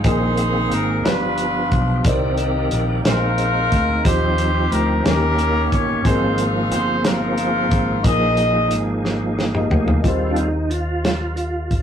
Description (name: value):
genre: slow gospel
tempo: 60 BPM (dotted quarters)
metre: 6/8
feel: straight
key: Eb major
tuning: A4 = 440 Hz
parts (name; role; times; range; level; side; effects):
- warm horn section; melody; 0.0-9.0 s; Bb3 to Eb5; -21 LUFS; left 1 dB; none
- dark baby grand piano; accompaniment; 0.0-11.8 s; G2 to G5; -27 LUFS; left 3 dB; none
- bright tonewheel organ; sustained chords; 0.0-11.8 s; Eb3 to D5; -23 LUFS; right 2 dB; slow rotary speaker, chorus vibrato
- fingered electric bass; bass; 0.0-11.8 s; Eb1 to Eb2; -23 LUFS; equal; none
- warm soul drum kit; drums; 0.0-11.8 s; hi-hat, kick drum, snare drum, toms; -21 LUFS; equal; none
room: moderate studio reverb, RT60 0.6 s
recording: rough rehearsal-room recording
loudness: -16 LUFS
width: side -8 dB against mid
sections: 0.0-10.0 A section; 10.0-11.8 B section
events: drum fill 9.0-10.0; tonewheel organ solo 10.0-11.8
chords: 0.0 Bb9sus4; 1.0 G7; 2.0 Cm9; 3.0 Bb9sus4; 4.0 Eb69; 5.0 Eb7; 6.0 Ab69; 8.0 Bb7sus4; 10.0 Eb69